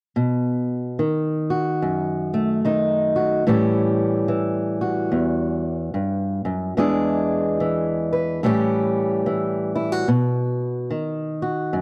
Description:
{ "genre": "blues", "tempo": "72 BPM", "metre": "4/4", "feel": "swing 61% on 8ths", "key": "unclear", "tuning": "A4 = 440 Hz", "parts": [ { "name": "fingerpicked old ladder-braced acoustic guitar", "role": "accompaniment", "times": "0.2-11.8 s", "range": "E2 to B4", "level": "-22 LUFS", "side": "equal", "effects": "none" } ], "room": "little or no reverb", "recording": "dry, close 1970s-style studio recording", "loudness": "-22 LUFS", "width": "mono", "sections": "0.2-11.8 A section", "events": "none", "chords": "0.2 B7; 3.5 A7; 6.8 E7; 8.4 A7; 10.1 B", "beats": "| 0.15 0.98 1.81 2.63 | 3.46 4.29 5.12 5.95 | 6.77 7.60 8.43 9.26 | 10.08 10.91 11.74" }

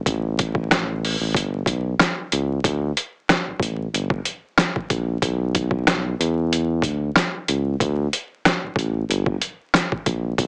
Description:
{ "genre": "hip hop, boom-bap hip-hop", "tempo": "93 BPM", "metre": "4/4", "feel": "swing 54% on 16ths", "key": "unclear", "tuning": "A4 = 440 Hz", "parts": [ { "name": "smooth synth bass", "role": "bass", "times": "0.1-10.5 s", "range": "G1 to E2", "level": "-25 LUFS", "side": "equal", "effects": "none" }, { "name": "boom bap sampler-style drum kit", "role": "drums", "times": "0.1-10.5 s", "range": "hi-hat, kick drum, rim click, snare drum", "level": "-22 LUFS", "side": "equal", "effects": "vintage 12-bit sampler grit" } ], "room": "light reverb", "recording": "heavily compressed radio sound, vinyl crackle, small speaker sound", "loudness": "-22 LUFS", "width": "mono", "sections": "0.0-2.6 A section; 2.6-10.5 B section", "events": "none", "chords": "none", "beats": "| 0.06 0.70 1.35 2.00 | 2.64 3.29 3.93 4.58 | 5.22 5.87 6.51 7.16 | 7.80 8.45 9.09 9.74 | 10.38" }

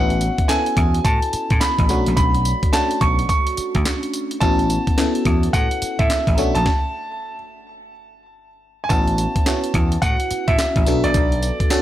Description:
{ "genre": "R&B, new jack swing", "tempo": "107 BPM", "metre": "4/4", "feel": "swing 63% on 16ths", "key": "A major", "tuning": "A4 = 440 Hz", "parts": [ { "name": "clear concert grand piano", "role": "melody", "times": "0.0-11.8 s", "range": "D5 to C#6", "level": "-23 LUFS", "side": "right 1 dB", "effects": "digital delay" }, { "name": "FM electric piano", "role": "accompaniment", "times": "0.0-11.8 s", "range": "A3 to A4", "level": "-24 LUFS", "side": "left 1 dB", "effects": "chorus, phaser" }, { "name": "vintage slap bass", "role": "bass", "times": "0.0-11.5 s", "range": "A1 to A2", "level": "-21 LUFS", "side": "equal", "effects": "none" }, { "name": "breakbeat sampler-style drum kit", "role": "drums", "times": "0.1-11.8 s", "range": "handclaps, hi-hat, kick drum, snare drum, tambourine", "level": "-20 LUFS", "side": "equal", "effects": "none" } ], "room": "little or no reverb", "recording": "none", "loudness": "-16 LUFS", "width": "side -12 dB against mid", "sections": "0.0-8.9 A section; 8.9-11.8 A section", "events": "stop 6.7-8.9", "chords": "0.0 A69; 1.9 Bm9; 4.4 A69; 6.4 Bm9; 8.9 A69; 10.9 Bm9", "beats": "0.49 1.05 1.61 | 2.17 2.73 3.29 3.85 | 4.42 4.98 5.54 6.10 | 6.66 7.22 7.78 8.34 | 8.90 9.46 10.02 10.58 | 11.14 11.71" }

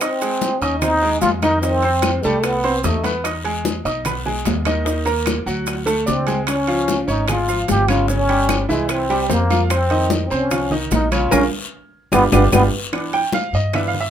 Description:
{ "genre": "Afro-Cuban jazz", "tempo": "148 BPM", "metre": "4/4", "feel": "straight", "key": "Ab major", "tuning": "A4 = 443 Hz", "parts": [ { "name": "trombone with plunger mute", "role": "melody", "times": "0.0-3.1, 6.1-12.6 s", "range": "G3 to G4", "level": "-20 LUFS", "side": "equal", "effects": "none" }, { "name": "bright upright piano", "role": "accompaniment", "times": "0.0-14.1 s", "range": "Db3 to Eb6", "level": "-21 LUFS", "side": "right 2 dB", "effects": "none" }, { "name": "bongos", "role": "percussion", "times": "0.0-14.1 s", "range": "none", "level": "-28 LUFS", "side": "left 6 dB", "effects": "none" }, { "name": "claves", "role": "percussion", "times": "0.0-13.9 s", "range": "none", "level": "-29 LUFS", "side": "left 5 dB", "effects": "none" }, { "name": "congas", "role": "percussion", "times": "0.0-14.1 s", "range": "none", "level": "-26 LUFS", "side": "left 4 dB", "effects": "none" }, { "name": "guiro", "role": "percussion", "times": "0.0-14.1 s", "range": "none", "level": "-32 LUFS", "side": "left 5 dB", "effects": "none" }, { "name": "maracas", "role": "percussion", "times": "0.0-12.6 s", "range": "none", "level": "-31 LUFS", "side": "right 5 dB", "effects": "none" }, { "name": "timbales", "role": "percussion", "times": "0.0-13.9 s", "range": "none", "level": "-28 LUFS", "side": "right 6 dB", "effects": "none" }, { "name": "upright bass", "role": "bass", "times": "0.6-14.1 s", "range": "G1 to G2", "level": "-22 LUFS", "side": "equal", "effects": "none" } ], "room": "light reverb", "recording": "minimal, uncompressed stereo recording", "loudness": "-16 LUFS", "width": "side -9 dB against mid", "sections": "0.0-12.9 A section; 12.9-14.1 B section", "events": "band accent 11.3-12.9; drum fill 12.3-12.9; upright piano solo 12.9-14.1", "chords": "0.0 Ab6; 1.6 F7; 3.2 Emaj7; 4.9 Ebm; 5.7 D7; 6.5 Db; 8.1 Dbdim/G; 8.9 C7; 9.7 F5; 11.3 Bb7(no3); 12.1 G7; 12.9 Em7", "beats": "| 0.01 0.42 0.82 1.23 | 1.63 2.03 2.44 2.84 | 3.25 3.65 4.05 4.46 | 4.86 5.27 5.67 6.07 | 6.48 6.88 7.29 7.69 | 8.09 8.50 8.90 9.30 | 9.71 10.11 10.51 10.92 | 11.32 11.72 12.13 12.53 | 12.94 13.34 13.74" }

